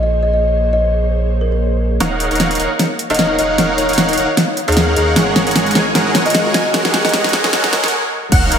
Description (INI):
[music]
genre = future bass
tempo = 152 BPM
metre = 4/4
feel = swing 55% on 16ths, half-time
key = Eb dorian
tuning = A4 = 440 Hz
[part]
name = kalimba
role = melody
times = 0.0-7.9 s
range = Ab4 to Eb5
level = -20 LUFS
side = left 1 dB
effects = sidechain pumping, low-pass filter, tape echo
[part]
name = ethereal airy pad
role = sustained chords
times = 0.0-8.6 s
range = Ab3 to Gb5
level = -25 LUFS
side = left 2 dB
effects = ensemble chorus, built-in reverb, sidechain pumping
[part]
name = saturated sub bass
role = bass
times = 0.0-8.6 s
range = Eb1 to Eb2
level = -20 LUFS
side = equal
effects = sidechain pumping
[part]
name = dense compressed supersaw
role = riff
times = 2.0-8.6 s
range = Ab3 to Ab5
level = -16 LUFS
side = right 1 dB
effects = sidechain pumping, low-pass filter, tape echo
[part]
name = pop drum kit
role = drums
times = 2.0-8.6 s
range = crash cymbal, hi-hat, snare drum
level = -16 LUFS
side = equal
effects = low-pass filter on snare, low-pass filter on hats, low-pass filter on cymbals, low-pass filter on room
[part]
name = riser and sub drop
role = sound effects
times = 3.5-8.6 s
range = none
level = -26 LUFS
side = equal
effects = none
[part]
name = wide unison pluck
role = arpeggios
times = 8.3-8.6 s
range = Gb5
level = -18 LUFS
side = right 1 dB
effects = lush chorus, sidechain pumping
[part]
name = electronic kick drum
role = drums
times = 8.3-8.4 s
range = none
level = -13 LUFS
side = equal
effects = none
[sound]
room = wet lush hall reverb, RT60 2.1 s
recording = dreamy mix soaked in reverb, high-pass filter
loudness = -12 LUFS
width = side -8 dB against mid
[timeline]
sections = 0.0-2.0 A section; 2.0-8.3 B section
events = build-up 2.0-8.3; drum fill 2.0-7.9; filter sweep on kalimba 2.0-8.3; filter sweep 2.0-8.3; stop 7.9-8.3; impact 8.3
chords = 0.0 Bbm9; 2.0 Ebm9; 5.2 Ab9sus4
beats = 0.03 | 0.43 0.82 1.22 1.61 | 2.00 2.40 2.79 3.19 | 3.58 3.98 4.37 4.77 | 5.16 5.56 5.95 6.35 | 6.74 7.14 7.53 7.93 | 8.32